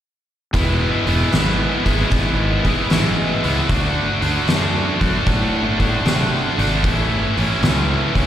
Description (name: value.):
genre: blues rock power trio and southern rock.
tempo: 76 BPM.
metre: 4/4.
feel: swing 67% on 8ths.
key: unclear.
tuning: A4 = 440 Hz.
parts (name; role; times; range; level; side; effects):
tight distorted guitar; riff; 0.5-8.3 s; A2 to F#4; -19 LUFS; equal; distortion.
fuzz fingered electric bass; bass; 0.5-8.3 s; E1 to C3; -21 LUFS; equal; overdrive.
oversized low-tuned drum kit; drums; 0.5-8.3 s; hi-hat, kick drum, snare drum; -21 LUFS; equal; none.
room: light reverb.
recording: live gig heard through the venue's PA, recital hall reverb.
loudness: -16 LUFS.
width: side -10 dB against mid.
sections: 0.5-8.3 A section.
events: none.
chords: 0.5 E; 3.7 D; 6.8 A.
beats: | 0.55 1.33 2.12 2.91 | 3.69 4.48 5.27 6.05 | 6.84 7.62.